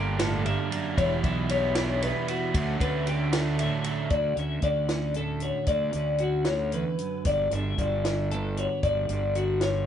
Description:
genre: math rock and midwest emo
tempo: 76 BPM (dotted quarters)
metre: 6/8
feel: straight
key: D major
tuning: A4 = 441 Hz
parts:
  - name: twelve-string electric guitar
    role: accompaniment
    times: 0.0-9.9 s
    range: D2 to A4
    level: -31 LUFS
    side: right 5 dB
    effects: none
  - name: twelve-string electric guitar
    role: arpeggios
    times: 0.0-9.9 s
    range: F#4 to E5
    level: -29 LUFS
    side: left 3 dB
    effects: none
  - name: raw garage guitar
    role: riff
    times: 0.0-4.1 s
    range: D3 to E4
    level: -32 LUFS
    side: right 3 dB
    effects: overdrive
  - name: fuzz fingered electric bass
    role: bass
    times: 0.0-9.9 s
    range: E1 to D2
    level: -30 LUFS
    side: equal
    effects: overdrive
  - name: compact cocktail drum kit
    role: drums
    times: 0.2-9.7 s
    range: hi-hat, kick drum, ride cymbal, snare drum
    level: -31 LUFS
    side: equal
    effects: none
room: light reverb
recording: band playing live in one room, nothing above 10.6 kHz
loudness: -24 LUFS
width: side -9 dB against mid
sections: 0.0-4.1 A section; 4.1-9.9 B section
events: none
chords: 0.0 Gmadd9; 1.0 Em9; 2.5 Dmaj7; 7.3 Gmaj7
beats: 0.19 | 0.97 1.76 | 2.54 3.33 | 4.11 4.90 | 5.68 6.47 | 7.26 8.04 | 8.83 9.61

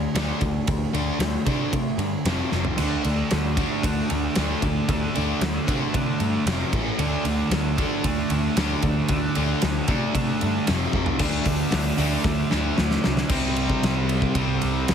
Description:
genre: hard rock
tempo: 114 BPM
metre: 4/4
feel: straight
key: D minor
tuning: A4 = 441 Hz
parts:
  - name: crunchy overdriven guitar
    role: riff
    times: 0.0-14.9 s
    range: F2 to D4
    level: -28 LUFS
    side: left 7 dB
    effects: none
  - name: sludgy distorted guitar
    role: riff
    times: 0.0-14.9 s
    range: F2 to D4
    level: -28 LUFS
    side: right 8 dB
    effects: overdrive
  - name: picked electric bass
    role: bass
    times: 0.0-14.9 s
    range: F1 to C3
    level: -27 LUFS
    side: equal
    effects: none
  - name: big rock drum kit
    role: drums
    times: 0.2-14.9 s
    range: crash cymbal, hi-hat, kick drum, ride cymbal, snare drum, splash cymbal, toms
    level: -26 LUFS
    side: equal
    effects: none
  - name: distorted electric guitar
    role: riff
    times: 2.8-14.9 s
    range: C3 to D4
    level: -29 LUFS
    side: equal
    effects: overdrive
room: light reverb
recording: heavily compressed radio sound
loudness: -21 LUFS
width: side -8 dB against mid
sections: 0.0-11.2 A section; 11.2-13.3 B section; 13.3-14.9 C section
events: drum fill 2.5, 10.9, 12.3-13.3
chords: 0.0 D5; 2.3 F5; 2.8 D5; 6.5 F5; 6.7 A5; 7.0 D5; 10.7 F5; 11.2 D5; 13.3 C5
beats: 0.16 | 0.68 1.21 1.74 2.26 | 2.79 3.32 3.84 4.37 | 4.89 5.42 5.95 6.47 | 7.00 7.53 8.05 8.58 | 9.10 9.63 10.15 10.68 | 11.21 11.73 12.26 12.78 | 13.31 13.83 14.36 14.88

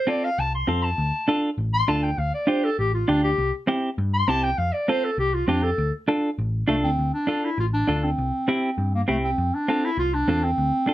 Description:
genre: latin, cumbia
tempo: 200 BPM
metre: 4/4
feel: straight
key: D minor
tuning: A4 = 440 Hz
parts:
  - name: warm clarinet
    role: melody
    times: 0.0-10.9 s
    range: A3 to C6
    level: -24 LUFS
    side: equal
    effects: none
  - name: clean electric guitar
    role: accompaniment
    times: 0.1-10.9 s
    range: C4 to A4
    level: -23 LUFS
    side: right 1 dB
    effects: none
  - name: hollow-body short-scale picked electric bass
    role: bass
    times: 0.4-10.7 s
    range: A1 to G2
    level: -25 LUFS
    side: equal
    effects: none
room: moderate studio ambience, RT60 0.5 s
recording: none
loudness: -21 LUFS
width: side -14 dB against mid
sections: 0.0-7.0 A section; 7.0-10.9 B section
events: clarinet solo 0.0-7.0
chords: 0.0 F; 1.0 Dm; 3.4 C; 4.6 F; 5.8 Dm; 8.2 C; 9.4 F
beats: 0.08 0.38 0.68 | 0.98 1.28 1.58 1.88 | 2.18 2.48 2.78 3.08 | 3.38 3.68 3.98 4.28 | 4.58 4.88 5.18 5.48 | 5.78 6.08 6.38 6.68 | 6.98 7.28 7.58 7.88 | 8.18 8.48 8.78 9.08 | 9.38 9.68 9.98 10.29 | 10.59 10.88

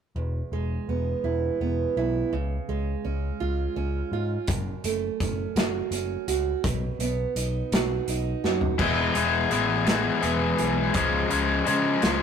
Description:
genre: quiet-loud alternative rock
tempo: 56 BPM (dotted quarters)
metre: 6/8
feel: straight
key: E major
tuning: A4 = 441 Hz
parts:
  - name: picked acoustic archtop guitar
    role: arpeggios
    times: 0.2-12.2 s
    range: E2 to G#4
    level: -29 LUFS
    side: right 8 dB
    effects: none
  - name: overdriven picked electric bass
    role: bass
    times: 0.2-12.2 s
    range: E1 to C#3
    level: -30 LUFS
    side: equal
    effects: none
  - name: loose indie drum kit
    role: drums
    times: 4.5-12.2 s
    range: crash cymbal, hi-hat, kick drum, snare drum, toms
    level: -28 LUFS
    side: equal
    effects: none
  - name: crunchy overdriven guitar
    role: riff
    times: 8.8-12.2 s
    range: C#3 to E4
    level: -22 LUFS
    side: left 4 dB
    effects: none
room: moderate small room reverb, RT60 0.5 s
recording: rough rehearsal-room recording, warm saturation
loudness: -23 LUFS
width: side -7 dB against mid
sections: 0.2-8.8 A section; 8.8-12.2 B section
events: drum fill 8.4-8.8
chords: 0.2 E; 2.3 C#; 4.5 F#m; 6.6 B; 8.8 E; 11.0 C#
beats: | 0.17 1.25 | 2.33 3.41 | 4.49 5.57 | 6.65 7.72 | 8.80 9.88 | 10.96 12.04

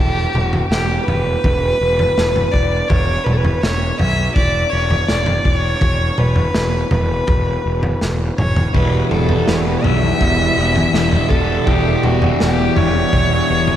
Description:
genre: psychedelic rock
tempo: 82 BPM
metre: 4/4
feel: straight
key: E dorian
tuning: A4 = 440 Hz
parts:
  - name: rich fiddle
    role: melody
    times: 0.0-13.8 s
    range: F#4 to E5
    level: -19 LUFS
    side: equal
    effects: analog delay
  - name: fuzz picked electric bass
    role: bass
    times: 0.0-13.8 s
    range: E1 to B1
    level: -20 LUFS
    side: equal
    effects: overdrive
  - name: crunchy breakbeat drum kit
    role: drums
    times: 0.4-13.8 s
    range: kick drum, snare drum, toms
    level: -19 LUFS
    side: equal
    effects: none
  - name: hand-pumped harmonium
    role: sustained chords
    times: 8.7-13.8 s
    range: G3 to E4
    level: -22 LUFS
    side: right 2 dB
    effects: none
  - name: fuzz guitar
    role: riff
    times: 8.7-13.8 s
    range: E2 to E3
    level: -18 LUFS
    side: left 1 dB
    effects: distortion, phaser
room: wet lush hall reverb, RT60 2.6 s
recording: dreamy mix soaked in reverb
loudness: -14 LUFS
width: side -11 dB against mid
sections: 0.0-13.8 A section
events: drum fill 8.0-8.7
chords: 0.0 Em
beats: 0.71 1.44 2.17 | 2.90 3.63 4.36 5.09 | 5.82 6.55 7.29 8.02 | 8.75 9.48 10.21 10.94 | 11.67 12.40 13.13

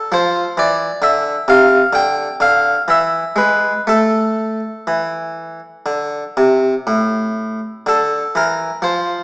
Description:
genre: classical, baroque-style suite movement for harpsichord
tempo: 58-68 BPM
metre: 4/4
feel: rubato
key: A minor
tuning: A4 = 440 Hz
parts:
  - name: harpsichord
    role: solo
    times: 0.0-9.2 s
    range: A2 to G5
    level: -13 LUFS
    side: equal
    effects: none
room: wet recital hall reverb, RT60 1.5 s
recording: recorded in a church or concert hall, small speaker sound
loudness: -13 LUFS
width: side -30 dB against mid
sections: 0.0-7.9 A section; 7.9-9.2 A section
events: none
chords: 0.1 F5; 1.9 N.C.; 2.9 E; 3.9 A5; 7.9 Dm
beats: | 0.11 1.01 1.92 2.87 | 3.86 4.87 5.87 6.86 | 7.86 8.82

